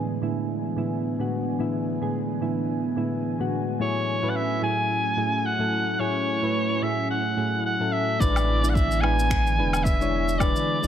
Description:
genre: sunset chillout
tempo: 109 BPM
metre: 4/4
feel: swing 55% on 16ths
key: unclear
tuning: A4 = 441 Hz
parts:
  - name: soft electric-piano-like synth keys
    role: accompaniment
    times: 0.0-10.9 s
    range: A2 to D5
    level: -27 LUFS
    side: moving between left 5 dB and right 6 dB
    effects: chorus, auto-pan, digital delay
  - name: airy breathy pad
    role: sustained chords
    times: 0.0-10.9 s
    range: A2 to G#5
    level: -30 LUFS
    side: equal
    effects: chorus
  - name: clear soprano saxophone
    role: melody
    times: 3.8-10.9 s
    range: C#5 to G#5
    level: -25 LUFS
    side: equal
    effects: digital delay
  - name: warm sub bass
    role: bass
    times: 8.2-10.9 s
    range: E1 to A1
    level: -25 LUFS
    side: equal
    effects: none
  - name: electronic kick drum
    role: drums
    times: 8.2-10.5 s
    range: none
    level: -25 LUFS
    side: equal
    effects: studio reverb
  - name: electronic shaker, woodblock and finger snaps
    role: drums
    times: 8.2-10.9 s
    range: none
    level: -32 LUFS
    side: left 3 dB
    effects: low-pass filter on perc, studio reverb, low-pass filter on snare
room: moderate recital hall reverb, RT60 1.4 s, digital ambience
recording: none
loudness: -22 LUFS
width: side -10 dB against mid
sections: 0.0-8.2 A section; 8.2-10.9 B section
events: none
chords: 0.0 E7/A; 3.8 F#m9/A; 8.2 E7

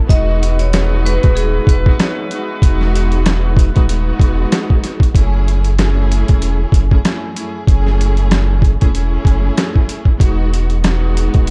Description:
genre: hip hop, boom-bap hip-hop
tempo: 95 BPM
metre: 4/4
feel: swing 58% on 16ths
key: F# dorian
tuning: A4 = 445 Hz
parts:
  - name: vibraphone with hard mallets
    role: melody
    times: 0.1-2.3 s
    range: G#4 to D#5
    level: -24 LUFS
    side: equal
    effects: high-pass filter, low-pass filter
  - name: warm studio string section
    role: accompaniment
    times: 0.1-11.5 s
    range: F#2 to G#4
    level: -24 LUFS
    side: equal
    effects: high-pass filter, low-pass filter
  - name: mellow horn section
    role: stabs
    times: 0.1-4.8 s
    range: G#3 to B4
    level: -30 LUFS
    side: equal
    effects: high-pass filter, low-pass filter, tape echo
  - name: warm sub bass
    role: bass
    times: 0.1-11.5 s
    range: D#1 to F#1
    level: -17 LUFS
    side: equal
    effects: none
  - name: boom bap sampler-style drum kit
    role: drums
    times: 0.1-11.5 s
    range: hi-hat, kick drum, snare drum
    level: -16 LUFS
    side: equal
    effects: none
room: small room ambience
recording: dark, warm production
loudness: -14 LUFS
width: mono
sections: 0.0-5.2 A section; 5.2-11.5 B section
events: none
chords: 0.1 Emaj7; 5.2 F#m7; 10.2 Emaj7

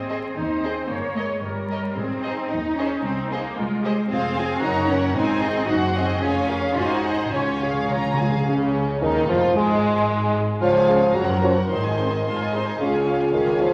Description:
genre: quick classical-period movement for symphony orchestra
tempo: 112 BPM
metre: 2/4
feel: straight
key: Ab major, Db major from 4.1 s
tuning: A4 = 445 Hz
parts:
  - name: rich studio viola section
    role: accompaniment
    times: 0.0-13.7 s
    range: Db3 to Db5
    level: -33 LUFS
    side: equal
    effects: none
  - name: rich studio cello section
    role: bass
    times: 0.0-13.7 s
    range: Db2 to F4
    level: -28 LUFS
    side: equal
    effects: none
  - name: rich studio double bass section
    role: bass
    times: 0.0-13.7 s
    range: F1 to Eb2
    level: -32 LUFS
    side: equal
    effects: none
  - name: warm studio violin section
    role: melody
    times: 0.1-13.7 s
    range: Ab3 to C6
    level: -32 LUFS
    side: equal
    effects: none
  - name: rich studio violin section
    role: second line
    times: 0.1-13.7 s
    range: Ab3 to F5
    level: -30 LUFS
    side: equal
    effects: none
  - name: timpani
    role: percussion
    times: 2.0-2.7, 5.1-8.4 s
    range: Ab2 to Db3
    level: -31 LUFS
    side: equal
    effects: none
  - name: dark bassoon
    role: accompaniment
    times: 8.5-13.7 s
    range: Db3 to Ab3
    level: -24 LUFS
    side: equal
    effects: none
  - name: mellow French horn section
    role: sustained chords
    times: 8.5-13.7 s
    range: Db3 to Bb4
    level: -28 LUFS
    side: equal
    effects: none
room: wet scoring stage reverb, RT60 1.6 s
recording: vinyl crackle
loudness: -22 LUFS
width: mono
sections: 0.0-8.5 A section; 8.5-13.7 B section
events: timpani fill 7.3-8.5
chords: 0.0 Ab; 0.9 Eb7/G (rootless); 2.0 Ab; 3.0 Ab/C; 4.1 Fm; 4.6 Gb; 5.2 Ab; 5.7 Ab7/Gb; 6.2 Db/F; 6.8 Ab7; 7.3 Db; 9.6 N.C.; 10.6 Db; 11.1 Gb; 11.7 Ab; 12.8 Db

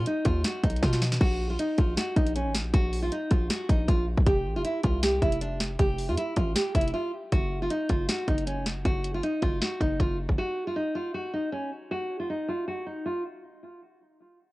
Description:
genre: hip hop, trap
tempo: 157 BPM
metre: 4/4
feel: half-time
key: unclear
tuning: A4 = 440 Hz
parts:
  - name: nylon-string guitar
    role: melody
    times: 0.0-13.2 s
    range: Db4 to G4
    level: -29 LUFS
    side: equal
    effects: cassette tape, tape echo
  - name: hard-hitting 808-style bass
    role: bass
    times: 0.0-10.4 s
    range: F1 to B2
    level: -28 LUFS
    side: equal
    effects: none
  - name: trap drum kit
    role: drums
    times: 0.1-10.4 s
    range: crash cymbal, hi-hat, kick drum, snare drum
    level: -27 LUFS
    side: equal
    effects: cassette tape
room: light reverb, digital ambience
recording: home recording on cassette, low-pass filter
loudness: -25 LUFS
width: side -20 dB against mid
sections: 0.0-7.3 A section; 7.3-13.4 B section; 13.4-14.5 C section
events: drum fill 0.8-1.2; break 6.9-7.3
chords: 0.0 B; 1.2 Ab7sus2 (rootless); 4.3 N.C.; 7.3 Ebmadd9; 10.4 N.C.

